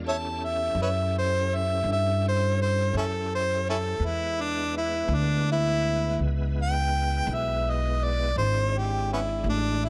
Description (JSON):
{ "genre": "slow blues", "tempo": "55 BPM (dotted quarters)", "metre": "12/8", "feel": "straight", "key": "unclear", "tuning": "A4 = 441 Hz", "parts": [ { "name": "bright tonewheel organ", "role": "sustained chords", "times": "0.0-9.9 s", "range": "G#3 to B4", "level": "-38 LUFS", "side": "equal", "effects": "slow rotary speaker, overdrive, chorus vibrato" }, { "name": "upright bass", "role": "bass", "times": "0.0-9.9 s", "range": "G#1 to G2", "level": "-30 LUFS", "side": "equal", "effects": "none" }, { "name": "warm harmonica", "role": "melody", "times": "0.1-9.9 s", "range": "B3 to A5", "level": "-29 LUFS", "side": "equal", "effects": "none" } ], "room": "light reverb, studio reverb", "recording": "dark, warm production", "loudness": "-26 LUFS", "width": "mono", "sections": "0.0-9.9 A section", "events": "harmonica solo 0.0-9.9", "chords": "0.0 A7; 4.0 E7" }